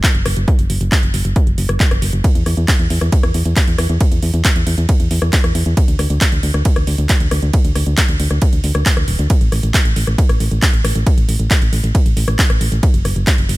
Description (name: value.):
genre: uplifting trance.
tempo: 136 BPM.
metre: 4/4.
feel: straight.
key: unclear.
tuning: A4 = 441 Hz.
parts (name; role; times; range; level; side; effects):
electronic kick drum; drums; 0.0-13.4 s; none; -14 LUFS; equal; none.
techno drum kit; drums; 0.0-13.6 s; handclaps, hi-hat, ride cymbal, rim click; -20 LUFS; equal; none.
solid FM bass; bass; 0.1-13.6 s; D1 to E2; -16 LUFS; equal; sidechain pumping.
room: digital ambience.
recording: none.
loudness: -12 LUFS.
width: side -19 dB against mid.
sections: 0.0-13.6 A section.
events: none.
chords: none.